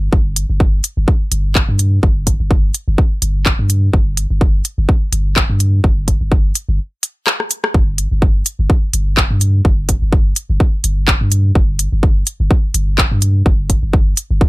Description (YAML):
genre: minimal techno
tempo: 126 BPM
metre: 4/4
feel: swing 56% on 16ths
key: unclear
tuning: A4 = 440 Hz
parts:
  - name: punchy sub bass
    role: bass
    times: 0.0-14.5 s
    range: G1 to G2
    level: -15 LUFS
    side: equal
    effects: sidechain pumping
  - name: electronic kick drum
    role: drums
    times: 0.1-14.5 s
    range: none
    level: -13 LUFS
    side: equal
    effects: none
  - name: house drum kit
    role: drums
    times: 0.4-14.3 s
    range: handclaps, hi-hat, rim click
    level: -16 LUFS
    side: equal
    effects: none
room: little or no reverb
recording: none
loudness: -12 LUFS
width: side -19 dB against mid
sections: 0.0-14.5 A section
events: break 6.8-7.7; drum fill 7.3-7.7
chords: none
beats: | 0.13 0.60 1.08 1.55 | 2.03 2.51 2.98 3.46 | 3.94 4.41 4.89 5.36 | 5.84 6.32 6.79 7.27 | 7.75 8.22 8.70 9.17 | 9.65 10.13 10.60 11.08 | 11.55 12.03 12.51 12.98 | 13.46 13.94 14.41